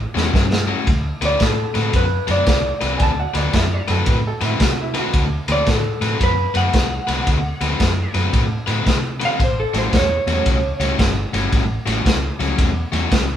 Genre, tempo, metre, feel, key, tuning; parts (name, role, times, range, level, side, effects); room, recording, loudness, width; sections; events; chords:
electric blues shuffle; 113 BPM; 4/4; swing 65% on 8ths; D mixolydian; A4 = 436 Hz
vintage muted fingered electric bass; bass; 0.0-13.4 s; G1 to C3; -22 LUFS; right 1 dB
cranked stack guitar; riff; 0.1-13.2 s; A2 to B4; -23 LUFS; left 4 dB; overdrive
crunchy breakbeat drum kit; drums; 0.2-13.3 s; kick drum, ride cymbal, snare drum; -20 LUFS; equal
clean lap steel guitar; melody; 1.3-11.0 s; A4 to F#5; -22 LUFS; equal
clear upright piano; second line; 3.0-5.3 s; E4 to A5; -26 LUFS; right 3 dB
moderate studio reverb, RT60 0.9 s; band playing live in one room; -16 LUFS; side -10 dB against mid
0.9-13.4 A section
drum fill 0.0-0.9
0.0 A6; 0.9 D6; 9.4 A6